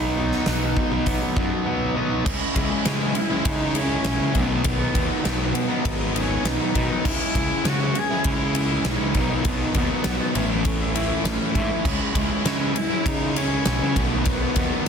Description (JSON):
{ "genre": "quiet-loud alternative rock", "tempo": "100 BPM", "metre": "4/4", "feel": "straight", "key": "C# minor", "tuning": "A4 = 441 Hz", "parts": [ { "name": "warm cello", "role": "melody", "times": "0.0-14.8 s", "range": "G#3 to G#4", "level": "-28 LUFS", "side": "equal", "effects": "digital delay" }, { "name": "electric guitar through a small old amp", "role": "arpeggios", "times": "0.0-11.9 s", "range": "A2 to E4", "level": "-30 LUFS", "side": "left 2 dB", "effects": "wide subtle chorus" }, { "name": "fuzz guitar", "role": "riff", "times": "0.0-14.9 s", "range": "A2 to E4", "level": "-26 LUFS", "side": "equal", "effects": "distortion" }, { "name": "fuzz picked electric bass", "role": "bass", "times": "0.0-14.7 s", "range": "G#1 to C#3", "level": "-27 LUFS", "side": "equal", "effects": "overdrive" }, { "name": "huge arena drum kit", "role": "drums", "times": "0.3-14.9 s", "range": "crash cymbal, hi-hat, kick drum, ride cymbal, snare drum", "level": "-25 LUFS", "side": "equal", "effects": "none" } ], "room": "light reverb, small room ambience", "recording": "dense, heavily limited modern master", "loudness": "-20 LUFS", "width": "side -7 dB against mid", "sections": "0.0-2.3 A section; 2.3-14.9 B section", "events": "none", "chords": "0.0 B; 2.3 C#m; 4.4 B; 7.1 C#m; 9.2 B; 10.4 A; 11.9 C#m; 14.0 B", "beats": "0.48 1.07 1.67 | 2.27 2.86 3.46 4.06 | 4.66 5.26 5.85 6.45 | 7.05 7.65 8.25 8.85 | 9.45 10.05 10.66 11.26 | 11.86 12.46 13.06 13.67 | 14.27 14.87" }